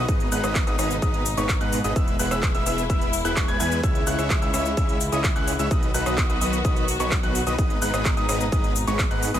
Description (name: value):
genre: EDM, festival progressive house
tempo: 128 BPM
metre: 4/4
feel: straight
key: unclear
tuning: A4 = 441 Hz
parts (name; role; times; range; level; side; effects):
- warm chamber string section; sustained chords; 0.0-9.4 s; B2 to F#4; -31 LUFS; left 1 dB; sidechain pumping
- warm grand piano; arpeggios; 0.0-9.4 s; C#6 to G#6; -30 LUFS; equal; vintage 12-bit sampler grit, sidechain pumping, digital delay
- big supersaw lead; riff; 0.0-9.4 s; F#3 to G#5; -27 LUFS; equal; sidechain pumping, digital delay
- fat analog bass; bass; 0.0-9.4 s; E1 to G#2; -29 LUFS; equal; sidechain pumping
- big-room dance drum kit; drums; 0.1-9.4 s; handclaps, hi-hat, rim click, shaker; -29 LUFS; equal; overdrive
- electronic kick drum; drums; 0.1-9.1 s; none; -24 LUFS; equal; none
room: digital ambience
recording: none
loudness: -20 LUFS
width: side -11 dB against mid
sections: 0.0-9.4 A section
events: none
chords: 0.1 G#m; 2.0 E; 3.8 C#m; 5.7 B; 7.6 G#m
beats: | 0.09 0.55 1.02 1.49 | 1.96 2.43 2.90 3.37 | 3.83 4.30 4.77 5.24 | 5.71 6.18 6.65 7.12 | 7.58 8.05 8.52 8.99